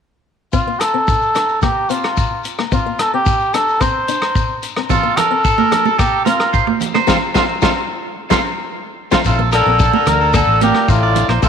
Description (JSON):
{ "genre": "highlife guitar band", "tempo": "110 BPM", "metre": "4/4", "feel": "straight", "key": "Bb major", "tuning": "A4 = 440 Hz", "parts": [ { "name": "trumpet with cup mute", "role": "melody", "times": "0.5-11.5 s", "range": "F4 to C5", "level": "-17 LUFS", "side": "equal", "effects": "none" }, { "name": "fingerpicked acoustic archtop guitar", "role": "accompaniment", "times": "0.5-11.5 s", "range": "A3 to F4", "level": "-24 LUFS", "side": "left 12 dB", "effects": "none" }, { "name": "warm soul drum kit", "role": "drums", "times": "0.5-11.5 s", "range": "hi-hat, kick drum, rim click, snare drum", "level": "-20 LUFS", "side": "equal", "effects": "none" }, { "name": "shekere", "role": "percussion", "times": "0.5-11.5 s", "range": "none", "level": "-26 LUFS", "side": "left 7 dB", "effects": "none" }, { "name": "agogo bells", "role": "percussion", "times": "0.8-11.4 s", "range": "none", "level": "-27 LUFS", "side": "left 11 dB", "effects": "none" }, { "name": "electric guitar at the edge of break-up", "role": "arpeggios", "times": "4.9-11.5 s", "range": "F4 to D5", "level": "-20 LUFS", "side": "right 9 dB", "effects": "slapback echo" }, { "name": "congas", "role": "percussion", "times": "4.9-11.3 s", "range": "none", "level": "-21 LUFS", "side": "right 12 dB", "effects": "none" }, { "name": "breathy tenor saxophone", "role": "second line", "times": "9.3-11.5 s", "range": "A2 to D3", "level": "-21 LUFS", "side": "left 9 dB", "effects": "none" }, { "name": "fingered electric bass", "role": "bass", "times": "9.3-11.5 s", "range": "A1 to D2", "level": "-17 LUFS", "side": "equal", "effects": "none" } ], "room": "moderate echo chamber reverb, RT60 2.1 s", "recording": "1960s-style stereo with parts hard left and right", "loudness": "-13 LUFS", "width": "side -7 dB against mid", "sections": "0.5-9.3 A section; 9.3-11.5 B section", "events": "band accent 7.1-9.3", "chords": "0.5 Bbmaj9; 4.9 Bbmaj7(no3); 7.1 F/A; 9.3 Bbmaj9", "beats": "| 0.53 1.07 1.62 2.17 | 2.72 3.26 3.81 4.36 | 4.90 5.45 5.99 6.54 | 7.08 7.62 8.17 8.71 | 9.25 9.80 10.34 10.88 | 11.43" }